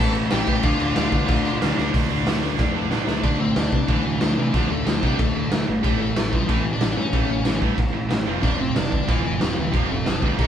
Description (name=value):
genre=punk rock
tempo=185 BPM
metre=4/4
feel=straight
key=D minor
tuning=A4 = 440 Hz
part: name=smooth overdriven lead guitar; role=melody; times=0.0-10.5 s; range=E3 to A5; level=-27 LUFS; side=left 2 dB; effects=none
part: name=fuzz guitar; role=riff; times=0.0-10.5 s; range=F2 to Eb4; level=-33 LUFS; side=equal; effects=none
part: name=overdriven semi-hollow guitar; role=riff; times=0.0-10.5 s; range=F2 to Eb4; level=-27 LUFS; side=left 7 dB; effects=none
part: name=tight distorted guitar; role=riff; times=0.0-10.5 s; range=F2 to Eb4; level=-28 LUFS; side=right 8 dB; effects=distortion
part: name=growling picked electric bass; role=bass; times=0.0-10.5 s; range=F1 to D3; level=-28 LUFS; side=right 1 dB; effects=overdrive
part: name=raw garage drum kit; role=drums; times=0.1-10.5 s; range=crash cymbal, hi-hat, kick drum, snare drum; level=-22 LUFS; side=equal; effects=none
room=moderate studio ambience, RT60 0.5 s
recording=band playing live in one room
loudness=-19 LUFS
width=side -9 dB against mid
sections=0.0-1.9 A section; 1.9-3.2 B section; 3.2-10.5 C section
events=drum fill 1.8, 2.6-3.2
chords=0.0 A5; 0.6 Dm; 5.8 A; 8.3 F5; 8.4 F